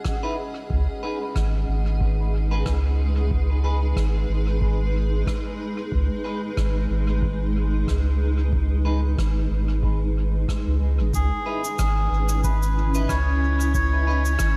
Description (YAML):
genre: ambient dub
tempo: 92 BPM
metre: 4/4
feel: swing 56% on 16ths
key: C# minor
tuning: A4 = 440 Hz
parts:
  - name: granular cloud pad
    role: sustained chords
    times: 0.0-14.6 s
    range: G#3 to G#5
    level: -32 LUFS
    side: equal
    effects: built-in reverb
  - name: rim click and cabasa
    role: drums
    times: 0.0-14.5 s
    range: none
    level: -41 LUFS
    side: equal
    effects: dub echo
  - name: electronic kick drum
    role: drums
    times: 0.1-14.5 s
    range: none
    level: -30 LUFS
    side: equal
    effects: none
  - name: clean electric guitar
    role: stabs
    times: 0.2-14.2 s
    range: D#4 to B4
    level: -38 LUFS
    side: equal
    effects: lush chorus, dub echo
  - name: warm sub bass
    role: bass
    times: 0.7-14.6 s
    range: G#1 to C#2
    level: -24 LUFS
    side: equal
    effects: none
  - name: melodica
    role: melody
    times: 11.1-14.6 s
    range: G#4 to C#5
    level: -29 LUFS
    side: equal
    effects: dub echo
room: light reverb, small room ambience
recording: none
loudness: -23 LUFS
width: mono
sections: 0.0-11.1 A section; 11.1-14.6 B section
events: none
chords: 0.0 C#m9; 0.7 G#m; 11.1 C#m9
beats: 0.05 | 0.70 1.36 2.01 2.66 | 3.31 3.96 4.62 5.27 | 5.92 6.57 7.22 7.88 | 8.53 9.18 9.83 10.49 | 11.14 11.79 12.44 13.10 | 13.75 14.40